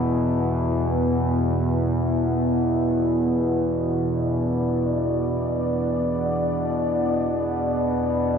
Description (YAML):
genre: dark ambient drone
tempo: free time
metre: none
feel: none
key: unclear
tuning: A4 = 440 Hz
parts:
  - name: dark analog pad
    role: sustained chords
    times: 0.0-8.4 s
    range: B3 to E5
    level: -24 LUFS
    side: equal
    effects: chorus
  - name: analog drone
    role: drone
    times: 0.0-8.4 s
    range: E2 to B2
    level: -23 LUFS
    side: equal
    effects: chorus
room: wet lush hall reverb, RT60 2.9 s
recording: dreamy mix soaked in reverb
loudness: -21 LUFS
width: side -6 dB against mid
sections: 0.0-8.4 A section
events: none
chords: 0.0 E5